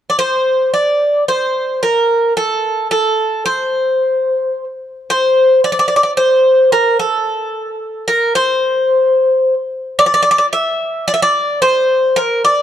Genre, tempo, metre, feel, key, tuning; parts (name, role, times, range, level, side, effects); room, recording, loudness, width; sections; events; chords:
greek folk; 110 BPM (eighths); 9/8; straight; A4 = 440 Hz
Greek bouzouki; solo; 0.1-12.6 s; A4 to E5; -12 LUFS; equal
wet plate reverb, RT60 2.5 s; dark, warm production; -12 LUFS; side -10 dB against mid
0.2-12.6 A section